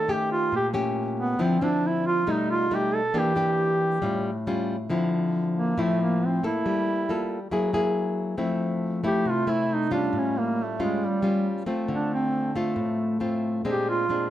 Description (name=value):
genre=bossa nova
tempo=137 BPM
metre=4/4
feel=straight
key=D minor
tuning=A4 = 440 Hz
part: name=warm duduk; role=melody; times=0.0-14.3 s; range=G3 to A4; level=-25 LUFS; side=right 2 dB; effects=none
part: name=nylon-string guitar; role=accompaniment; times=0.0-14.3 s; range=A2 to A4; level=-25 LUFS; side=left 1 dB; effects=none
room=moderate studio reverb, RT60 0.7 s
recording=none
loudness=-23 LUFS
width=side -12 dB against mid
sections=0.0-4.9 A section; 4.9-14.3 A section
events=duduk solo 0.0-4.9, 4.9-14.3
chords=0.0 Eb7#11; 1.4 Dm9; 2.3 Baug7; 3.1 Em7b5; 4.0 Aaug7; 4.9 Dm9; 6.6 Gm9; 7.5 F#9; 8.4 Fmaj7; 10.1 A7b13; 11.9 Dm7; 13.6 Bb9